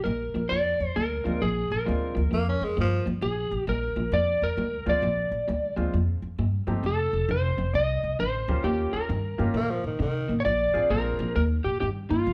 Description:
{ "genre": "electric blues shuffle", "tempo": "133 BPM", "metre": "4/4", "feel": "swing 64% on 8ths", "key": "Bb mixolydian", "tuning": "A4 = 440 Hz", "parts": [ { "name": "electric slide guitar", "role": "melody", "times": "0.0-12.3 s", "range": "F4 to Eb5", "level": "-30 LUFS", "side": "equal", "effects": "none" }, { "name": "electric guitar through a small old amp", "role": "riff", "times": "0.1-12.3 s", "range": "F2 to C4", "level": "-34 LUFS", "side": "equal", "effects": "none" }, { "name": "upright bass", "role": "bass", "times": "0.1-12.3 s", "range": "F1 to C3", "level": "-31 LUFS", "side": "equal", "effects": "none" }, { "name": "bright upright piano", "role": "accompaniment", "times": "1.2-2.1, 4.9-11.3 s", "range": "Ab3 to Ab4", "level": "-37 LUFS", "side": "equal", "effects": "none" }, { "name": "growling tenor saxophone", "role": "second line", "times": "2.3-3.1, 9.6-10.4 s", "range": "Eb3 to Db4", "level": "-32 LUFS", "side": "equal", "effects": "none" } ], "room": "light reverb", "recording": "band playing live in one room", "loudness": "-26 LUFS", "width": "mono", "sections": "0.0-12.3 A section", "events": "none", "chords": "0.0 Bb; 6.8 F7; 8.6 Eb7; 10.4 Bb7; 11.3 Eb", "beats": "0.05 0.50 0.96 | 1.41 1.86 2.31 2.77 | 3.22 3.67 4.12 4.58 | 5.03 5.48 5.93 6.38 | 6.84 7.29 7.74 8.19 | 8.64 9.09 9.54 10.00 | 10.45 10.90 11.35 11.80 | 12.25" }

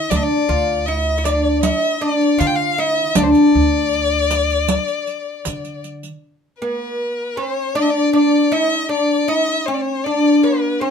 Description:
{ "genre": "Arabic maqam ensemble", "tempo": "78 BPM", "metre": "4/4", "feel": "straight", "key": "unclear", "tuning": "A4 = 440 Hz", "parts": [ { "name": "oud", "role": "melody", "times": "0.0-10.9 s", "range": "Bb3+50c to F4", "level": "-17 LUFS", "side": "equal", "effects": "none" }, { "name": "rich violin", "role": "second line", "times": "0.0-10.9 s", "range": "B4-46c to G5", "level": "-20 LUFS", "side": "left 5 dB", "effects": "none" }, { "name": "upright bass", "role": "bass", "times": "0.1-6.1 s", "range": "D2 to D3", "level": "-23 LUFS", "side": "right 1 dB", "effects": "none" }, { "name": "riq", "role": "percussion", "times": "0.1-6.1 s", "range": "none", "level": "-22 LUFS", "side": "right 4 dB", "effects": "none" } ], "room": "light reverb", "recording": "minimal, uncompressed stereo recording", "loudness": "-15 LUFS", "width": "side -7 dB against mid", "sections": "0.0-6.2 A section; 6.2-10.9 B section", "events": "none", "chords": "none", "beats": "| 0.10 0.87 1.63 2.40 | 3.16 3.92 4.69 5.45 | 6.22 6.98 7.75 8.51 | 9.28 10.04 10.81" }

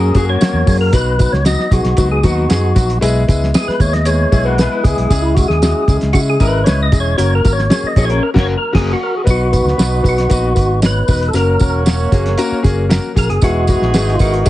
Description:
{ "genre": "uptempo 1960s-style soul", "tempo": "115 BPM", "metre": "4/4", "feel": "straight", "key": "B major", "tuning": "A4 = 440 Hz", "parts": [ { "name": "percussive tonewheel organ", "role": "melody", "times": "0.0-14.5 s", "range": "E4 to D#5", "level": "-18 LUFS", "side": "equal", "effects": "overdrive, fast rotary speaker" }, { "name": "warm concert grand piano", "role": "accompaniment", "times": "0.0-14.5 s", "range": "F#3 to C#5", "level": "-19 LUFS", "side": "left 3 dB", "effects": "none" }, { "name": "electric guitar through a small old amp", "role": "riff", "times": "0.0-0.9, 4.5-8.9 s", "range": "G#3 to C#5", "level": "-23 LUFS", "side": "left 4 dB", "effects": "lush chorus" }, { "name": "fingered electric bass", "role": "bass", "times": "0.0-14.5 s", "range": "E1 to C#3", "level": "-16 LUFS", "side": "equal", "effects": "none" }, { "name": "cloth-damped thuddy drum kit", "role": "drums", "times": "0.1-14.5 s", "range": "crash cymbal, hi-hat, kick drum, snare drum", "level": "-15 LUFS", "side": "equal", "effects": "none" }, { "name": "tambourine", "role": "percussion", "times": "0.1-14.5 s", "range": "none", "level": "-30 LUFS", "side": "right 6 dB", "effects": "none" }, { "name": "mellow horn section", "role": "second line", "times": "9.3-14.5 s", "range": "F#3 to D#5", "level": "-24 LUFS", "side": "right 4 dB", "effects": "none" } ], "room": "small room ambience", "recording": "heavily compressed radio sound, nothing above 10.3 kHz", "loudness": "-11 LUFS", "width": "side -15 dB against mid", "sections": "0.0-9.3 A section; 9.3-14.5 B section", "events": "tonewheel organ solo 0.0-9.3; band accent 8.2-9.3", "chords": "0.0 F#; 0.9 B; 3.0 E/B; 5.1 C#m; 7.2 F#; 9.3 B; 11.3 F#; 13.4 E", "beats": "0.41 | 0.94 1.46 1.98 2.50 | 3.02 3.54 4.06 4.58 | 5.10 5.62 6.14 6.66 | 7.18 7.70 8.22 8.74 | 9.26 9.78 10.30 10.82 | 11.34 11.86 12.38 12.90 | 13.42 13.94 14.46" }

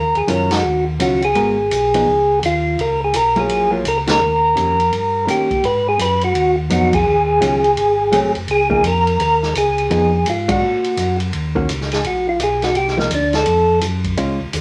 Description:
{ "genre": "soul jazz organ trio", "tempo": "168 BPM", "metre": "4/4", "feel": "swing 63% on 8ths", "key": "Eb minor", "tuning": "A4 = 435 Hz", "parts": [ { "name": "percussive tonewheel organ", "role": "melody", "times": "0.0-13.8 s", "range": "Bb3 to Cb5", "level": "-18 LUFS", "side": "equal", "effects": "slow rotary speaker" }, { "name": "mellow tonewheel organ", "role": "bass", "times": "0.0-14.6 s", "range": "Gb1 to Bb2", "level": "-25 LUFS", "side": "equal", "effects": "overdrive, chorus vibrato, slow rotary speaker" }, { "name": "vintage drum kit", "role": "drums", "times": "0.2-14.6 s", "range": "hi-hat, kick drum, ride cymbal, snare drum", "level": "-28 LUFS", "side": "equal", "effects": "none" }, { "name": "hollow-body jazz guitar", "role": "accompaniment", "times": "0.3-14.4 s", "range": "Eb3 to Bb4", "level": "-24 LUFS", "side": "equal", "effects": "none" } ], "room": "wet studio reverb, RT60 0.6 s", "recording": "none", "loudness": "-17 LUFS", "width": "mono", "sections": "0.0-11.3 A section; 11.3-14.6 B section", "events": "band accent 0.5, 4.0, 6.9, 10.4; tonewheel organ solo 11.3-14.6", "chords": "0.0 Ebm9; 1.4 Abm9; 2.1 Dbadd9; 2.8 Gbmaj9; 4.2 Eb7; 5.6 Abm7; 7.1 Ebm9; 7.8 Ab7b9; 8.5 Db69; 9.9 Fm7b5; 10.6 Gb; 11.3 Ebm7; 12.8 Cm11; 13.5 F", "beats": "0.28 0.64 1.00 | 1.35 1.71 2.07 2.42 | 2.78 3.14 3.49 3.85 | 4.21 4.56 4.92 5.28 | 5.63 5.99 6.34 6.70 | 7.06 7.41 7.77 8.12 | 8.48 8.84 9.19 9.55 | 9.90 10.26 10.62 10.97 | 11.33 11.68 12.04 12.39 | 12.75 13.11 13.46 13.82 | 14.17 14.53" }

